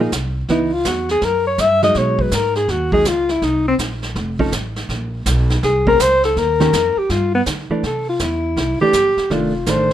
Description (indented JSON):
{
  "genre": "jazz, small-group swing and bop",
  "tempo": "163 BPM",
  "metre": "4/4",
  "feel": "swing 65% on 8ths",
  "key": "unclear",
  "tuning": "A4 = 439 Hz",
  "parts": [
    { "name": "hollow-body jazz guitar", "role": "accompaniment", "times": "0.0-9.9 s", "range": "Eb3 to C5", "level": "-19 LUFS", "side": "right 2 dB", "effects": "none" },
    { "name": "upright bass", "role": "bass", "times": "0.0-9.9 s", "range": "F1 to D3", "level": "-22 LUFS", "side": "right 1 dB", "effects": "none" },
    { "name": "vintage brush drum kit", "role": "drums", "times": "0.1-9.9 s", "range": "brushed snare drum, hi-hat, kick drum, snare drum", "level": "-25 LUFS", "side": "right 2 dB", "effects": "none" },
    { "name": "mellow alto saxophone", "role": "melody", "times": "0.5-9.9 s", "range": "Cb4 to Fb5", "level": "-16 LUFS", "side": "left 1 dB", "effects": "none" }
  ],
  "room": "light reverb",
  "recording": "minimal, uncompressed stereo recording",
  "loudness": "-15 LUFS",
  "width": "side -11 dB against mid",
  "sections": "0.0-7.8 A section; 7.8-9.9 B section",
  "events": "alto saxophone solo 7.8-9.9",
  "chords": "0.5 Dbm9; 1.2 Gb13b9; 2.0 B6; 3.4 Bbsus24; 4.2 F7b13; 4.9 Bbmadd9; 6.4 Eb7; 7.1 Gsus2; 7.8 C; 9.3 F13",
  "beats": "0.12 | 0.49 0.85 1.22 1.59 | 1.95 2.32 2.69 3.05 | 3.42 3.79 4.16 4.52 | 4.89 5.26 5.62 5.99 | 6.36 6.73 7.09 7.46 | 7.83 8.20 8.56 8.93 | 9.30 9.67"
}